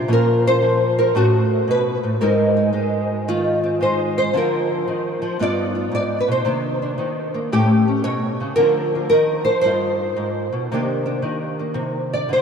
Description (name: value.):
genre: solo jazz.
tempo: 113 BPM.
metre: 4/4.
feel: swing 67% on 8ths.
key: C minor.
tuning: A4 = 440 Hz.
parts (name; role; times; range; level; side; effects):
nylon-string guitar; solo; 0.0-12.4 s; G2 to D5; -17 LUFS; equal; ensemble chorus, analog delay.
room: wet huge ambient reverb, RT60 4.6 s.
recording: dreamy mix soaked in reverb.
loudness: -17 LUFS.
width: side -6 dB against mid.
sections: 0.0-10.7 A section; 10.7-12.4 B section.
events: nylon-string guitar solo 10.7-12.4.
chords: 0.1 Bbmadd9; 1.1 A69; 2.2 Ab; 4.3 Cm11/D; 5.4 G7b13; 6.5 Cm9; 7.5 A7; 8.6 Cm11/D; 9.6 G7b13; 10.7 Cm9.